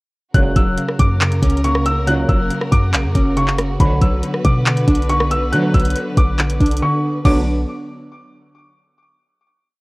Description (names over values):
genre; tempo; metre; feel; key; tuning
hip hop, trap; 139 BPM; 4/4; half-time; B harmonic minor; A4 = 440 Hz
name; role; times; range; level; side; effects
dark baby grand piano; melody; 0.3-7.5 s; B5 to F#6; -23 LUFS; left 1 dB; digital delay
glassy wavetable pluck; accompaniment; 0.3-7.5 s; C#3 to D4; -21 LUFS; equal; chorus
rich chamber string section; sustained chords; 0.3-7.5 s; C#3 to B4; -26 LUFS; equal; none
mellow brass ensemble; stabs; 0.3-7.4 s; C#2 to F#3; -23 LUFS; right 2 dB; none
clean 808-style bass; bass; 0.3-7.7 s; E1 to F#3; -19 LUFS; equal; none
trap drum kit; drums; 0.3-7.4 s; crash cymbal, handclaps, hi-hat, kick drum, rim click; -17 LUFS; equal; none
room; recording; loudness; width
little or no reverb; worn, warbling old tape, cassette tape, warbly pitch drift; -14 LUFS; side -24 dB against mid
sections
0.3-7.3 hook; 7.3-9.0 final chord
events
drums muted 6.8-7.3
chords
0.3 F#; 3.8 Bm